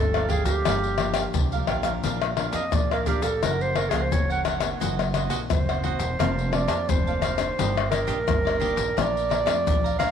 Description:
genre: samba and choro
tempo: 87 BPM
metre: 4/4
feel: straight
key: Bb major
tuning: A4 = 439 Hz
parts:
  - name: warm clarinet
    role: melody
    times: 0.0-10.1 s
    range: G4 to Gb5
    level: -27 LUFS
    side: right 2 dB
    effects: none
  - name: nylon-string guitar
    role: accompaniment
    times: 0.0-10.1 s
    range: F2 to A4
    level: -33 LUFS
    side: left 8 dB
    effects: none
  - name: upright bass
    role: bass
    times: 0.0-10.1 s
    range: E1 to F2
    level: -30 LUFS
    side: right 2 dB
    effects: none
  - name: cavaquinho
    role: accompaniment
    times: 0.1-10.1 s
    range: D4 to Bb5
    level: -32 LUFS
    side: right 11 dB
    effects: none
  - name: egg shaker, pandeiro, tamborim and surdo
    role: percussion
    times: 0.1-10.1 s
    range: none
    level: -25 LUFS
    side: left 4 dB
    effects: none
room: moderate plate reverb, RT60 3.3 s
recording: 1960s-style stereo with parts hard left and right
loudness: -22 LUFS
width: side -8 dB against mid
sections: 0.0-2.0 A section; 2.0-10.1 B section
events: clarinet solo 2.0-10.1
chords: 0.0 Gm7; 2.0 Bb; 3.4 Gbmaj7; 4.8 Ebm6/Gb; 6.2 Bbmaj7/F; 7.6 Ebmaj7/G; 9.0 Bbmaj7

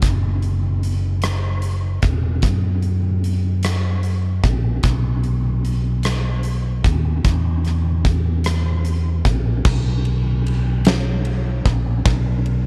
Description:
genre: six-eight pop ballad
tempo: 50 BPM (dotted quarters)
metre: 6/8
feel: straight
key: B major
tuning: A4 = 440 Hz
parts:
  - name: fingered electric bass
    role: bass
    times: 0.0-12.7 s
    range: E1 to F#2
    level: -21 LUFS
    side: equal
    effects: none
  - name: huge arena drum kit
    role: drums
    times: 0.0-12.6 s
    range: crash cymbal, hi-hat, kick drum, ride cymbal, rim click, snare drum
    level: -24 LUFS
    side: equal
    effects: none
room: little or no reverb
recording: dark, warm production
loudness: -20 LUFS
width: mono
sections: 0.0-9.7 A section; 9.7-12.7 B section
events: none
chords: none

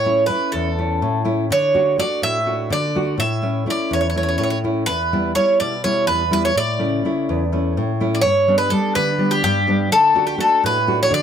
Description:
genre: greek folk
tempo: 250 BPM (eighths)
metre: 7/8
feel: straight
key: D major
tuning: A4 = 442 Hz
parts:
  - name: Greek bouzouki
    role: melody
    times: 0.0-11.2 s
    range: G4 to E5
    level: -18 LUFS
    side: equal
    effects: none
  - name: nylon-string guitar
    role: accompaniment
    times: 0.0-11.2 s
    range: E2 to F#4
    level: -20 LUFS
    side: equal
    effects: none
room: light reverb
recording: close, detailed microphones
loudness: -16 LUFS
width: side -8 dB against mid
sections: 0.0-8.2 A section; 8.2-11.2 B section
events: none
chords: 0.0 A; 1.5 D; 3.2 A; 4.9 Em; 6.5 A; 8.2 G; 9.9 D

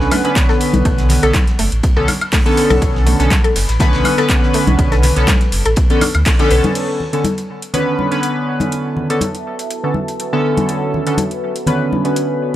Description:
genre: deep house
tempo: 122 BPM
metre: 4/4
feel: swing 54% on 16ths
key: B minor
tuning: A4 = 443 Hz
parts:
  - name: chorused polysynth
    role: stabs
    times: 0.0-12.6 s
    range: D3 to B4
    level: -17 LUFS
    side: equal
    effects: sidechain pumping, tape echo
  - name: sub bass with octave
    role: bass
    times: 0.0-6.6 s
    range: F#1 to D2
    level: -16 LUFS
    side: equal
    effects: sidechain pumping
  - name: warm soul drum kit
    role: drums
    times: 0.0-6.7 s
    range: hi-hat, ride cymbal, snare drum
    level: -32 LUFS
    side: left 2 dB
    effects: none
  - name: deep dark ambient pad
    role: texture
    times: 2.3-12.6 s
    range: F#4 to B5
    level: -28 LUFS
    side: left 1 dB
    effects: chorus, built-in reverb, sidechain pumping
  - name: mallet-like synth pluck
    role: arpeggios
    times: 0.1-6.5 s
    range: A3 to B4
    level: -22 LUFS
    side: left 2 dB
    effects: chorus, phaser, sidechain pumping, tape echo
  - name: deep house drum kit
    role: drums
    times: 0.1-12.3 s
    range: crash cymbal, handclaps, hi-hat, woodblock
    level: -22 LUFS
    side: equal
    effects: overdrive, studio reverb
  - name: congas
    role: percussion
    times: 0.1-12.0 s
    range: none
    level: -22 LUFS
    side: left 2 dB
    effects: sidechain pumping on perc
  - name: electronic kick drum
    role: drums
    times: 0.4-6.4 s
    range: none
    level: -15 LUFS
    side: equal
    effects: studio reverb
room: small room reverb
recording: none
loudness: -13 LUFS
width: side -13 dB against mid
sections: 0.0-6.8 A section; 6.8-12.6 B section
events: band accent 6.3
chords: 0.0 Bm9

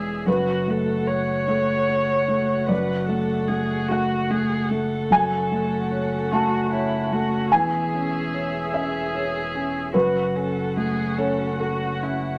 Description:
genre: neoclassical piano and strings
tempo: 50 BPM (dotted quarters)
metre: 6/8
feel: rubato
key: F# minor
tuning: A4 = 440 Hz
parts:
  - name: muted violin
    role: melody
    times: 0.0-12.4 s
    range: E4 to C#5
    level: -29 LUFS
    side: equal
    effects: none
  - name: felt-muted upright piano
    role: accompaniment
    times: 0.0-12.4 s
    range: E2 to A5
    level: -25 LUFS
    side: equal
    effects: none
  - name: muted chamber string section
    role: sustained chords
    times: 0.0-12.4 s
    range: G#3 to F#5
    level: -36 LUFS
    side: equal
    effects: none
  - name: warm sub bass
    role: bass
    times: 0.0-12.4 s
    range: E1 to F#1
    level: -34 LUFS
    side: equal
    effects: none
room: wet studio reverb, RT60 0.9 s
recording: none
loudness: -23 LUFS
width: mono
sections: 0.0-12.4 A section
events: none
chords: 0.3 F#m; 2.7 D/F#; 5.1 F#m; 7.5 C#m/E; 9.9 F#m

